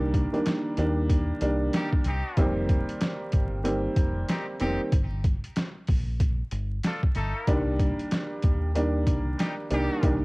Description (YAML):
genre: hip hop, boom-bap hip-hop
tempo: 94 BPM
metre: 4/4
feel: swing 61% on 16ths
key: C dorian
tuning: A4 = 443 Hz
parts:
  - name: dark upright piano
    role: accompaniment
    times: 0.0-10.2 s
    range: Eb3 to D4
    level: -28 LUFS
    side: right 1 dB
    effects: cassette tape, high-pass filter, low-pass filter
  - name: deep dub fingered electric bass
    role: bass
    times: 0.0-10.2 s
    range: F1 to Eb2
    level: -29 LUFS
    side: equal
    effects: none
  - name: trip hop sampler-style drum kit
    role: drums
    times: 0.1-10.2 s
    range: hi-hat, kick drum, snare drum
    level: -26 LUFS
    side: equal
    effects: overdrive
  - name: muted trumpet section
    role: stabs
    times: 1.7-10.2 s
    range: G3 to A4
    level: -35 LUFS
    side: left 1 dB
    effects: high-pass filter, low-pass filter, cassette tape, tape echo
room: studio reverb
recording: home recording on cassette, vinyl crackle, faint mains hum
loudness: -24 LUFS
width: side -25 dB against mid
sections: 0.0-10.2 A section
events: none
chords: 0.0 Cm9; 2.4 F9sus4; 4.9 Gmadd9; 7.5 Cm9